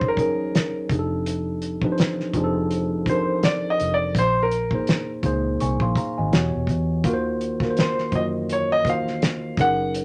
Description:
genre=R&B, neo-soul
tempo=83 BPM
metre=4/4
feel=swing 56% on 16ths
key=Eb dorian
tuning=A4 = 440 Hz
part: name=warm grand piano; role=melody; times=0.0-9.9 s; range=Bb4 to Gb5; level=-25 LUFS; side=equal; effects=none
part: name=mellow tine electric piano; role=accompaniment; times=0.0-10.0 s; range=Bb2 to Db6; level=-27 LUFS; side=equal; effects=none
part: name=vintage muted fingered electric bass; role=bass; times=0.0-10.0 s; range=E1 to Gb2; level=-30 LUFS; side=equal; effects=none
part: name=cloth-damped thuddy drum kit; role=drums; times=0.0-10.0 s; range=hi-hat, kick drum, snare drum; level=-26 LUFS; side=equal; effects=none
room=moderate studio reverb, RT60 0.5 s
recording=none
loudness=-23 LUFS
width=mono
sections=0.0-10.0 A section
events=grand piano solo 0.0-10.0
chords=0.0 Gb6; 0.9 F13; 4.1 Bb7sus4; 6.3 Em69; 7.0 Ebm69

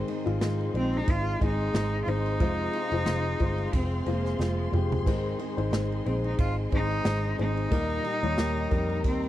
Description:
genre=piano-driven pop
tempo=90 BPM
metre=4/4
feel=swing 56% on 16ths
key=Ab major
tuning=A4 = 438 Hz
part: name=warm upright piano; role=accompaniment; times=0.0-9.3 s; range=Ab2 to Db5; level=-32 LUFS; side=left 7 dB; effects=none
part: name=dark studio string section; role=sustained chords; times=0.0-9.3 s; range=G4 to C6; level=-40 LUFS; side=left 2 dB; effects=none
part: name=fingerpicked steel-string acoustic guitar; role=riff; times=0.0-9.3 s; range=Ab2 to Bb4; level=-36 LUFS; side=right 6 dB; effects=none
part: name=unplugged drum kit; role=drums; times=0.1-9.3 s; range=crash cymbal, kick drum, ride cymbal, snare drum, toms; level=-28 LUFS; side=right 1 dB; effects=none
part: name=vintage muted picked electric bass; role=bass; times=0.3-9.3 s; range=F1 to F2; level=-30 LUFS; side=equal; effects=none
part: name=rich cello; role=melody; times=0.8-9.3 s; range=Ab3 to F4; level=-31 LUFS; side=equal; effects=none
room=little or no reverb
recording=dry, close 1970s-style studio recording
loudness=-25 LUFS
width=side -13 dB against mid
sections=0.0-9.3 A section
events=drum fill 4.4-5.1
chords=0.0 Ab; 2.4 Fm; 5.1 Ab; 7.7 Eb

